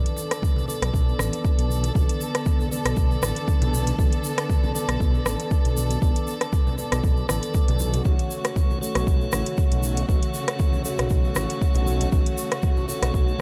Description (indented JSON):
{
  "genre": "afro house",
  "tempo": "118 BPM",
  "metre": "4/4",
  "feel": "swing 54% on 16ths",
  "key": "B minor",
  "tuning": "A4 = 440 Hz",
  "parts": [
    { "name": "warm studio string section", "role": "sustained chords", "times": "0.0-13.4 s", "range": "C#3 to A4", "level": "-34 LUFS", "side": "equal", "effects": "sidechain pumping" },
    { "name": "tonewheel organ", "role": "stabs", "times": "0.0-13.4 s", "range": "A3 to D5", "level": "-33 LUFS", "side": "equal", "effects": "slow rotary speaker, sidechain pumping, tape echo" },
    { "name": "dark detuned saw bass", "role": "bass", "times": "0.0-13.3 s", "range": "A1 to B1", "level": "-28 LUFS", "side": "equal", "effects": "sidechain pumping" },
    { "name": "afro-pop drum kit", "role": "drums", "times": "0.1-13.1 s", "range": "hi-hat, rim click", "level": "-30 LUFS", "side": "equal", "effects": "none" },
    { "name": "egg shaker", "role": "percussion", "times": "0.1-13.4 s", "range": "none", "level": "-39 LUFS", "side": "equal", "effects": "none" },
    { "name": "congas", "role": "percussion", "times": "0.2-13.4 s", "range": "none", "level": "-36 LUFS", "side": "equal", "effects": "none" },
    { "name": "electronic kick drum", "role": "drums", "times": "0.4-13.2 s", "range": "none", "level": "-24 LUFS", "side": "equal", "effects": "none" }
  ],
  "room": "studio ambience",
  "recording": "none",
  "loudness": "-23 LUFS",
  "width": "mono",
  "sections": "0.0-13.4 A section",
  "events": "none",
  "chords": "0.0 Bm7; 8.1 F#m",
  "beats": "0.43 0.94 1.45 | 1.95 2.46 2.97 3.48 | 3.99 4.50 5.00 5.51 | 6.02 6.53 7.04 7.55 | 8.05 8.56 9.07 9.58 | 10.09 10.60 11.11 11.61 | 12.12 12.63 13.14"
}